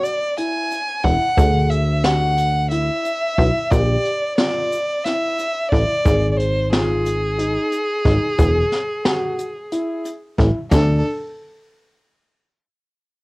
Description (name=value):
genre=progressive instrumental, band music in an uneven meter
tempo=180 BPM (eighths)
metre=7/8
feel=straight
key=D lydian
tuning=A4 = 442 Hz
part: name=rich violin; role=melody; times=0.0-11.0 s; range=G#4 to G#5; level=-21 LUFS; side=equal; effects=cassette tape
part: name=dark grand piano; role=arpeggios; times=0.0-11.0 s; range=D4 to G#4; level=-25 LUFS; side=left 1 dB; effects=none
part: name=jazz brush drum kit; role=drums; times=0.0-10.9 s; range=hi-hat, kick drum, snare drum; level=-21 LUFS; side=equal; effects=cassette tape
part: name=egg shaker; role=percussion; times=0.1-11.0 s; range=none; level=-44 LUFS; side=right 3 dB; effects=none
part: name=plucky analog bass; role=bass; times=1.0-11.0 s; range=E1 to D2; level=-18 LUFS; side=equal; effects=none
room=light reverb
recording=home recording on cassette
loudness=-17 LUFS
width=side -24 dB against mid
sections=0.0-10.7 A section; 10.7-13.1 B section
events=none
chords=0.0 Eadd9; 1.4 Dadd9; 3.7 Bb6; 6.1 G#5; 8.4 Eadd9; 10.7 D5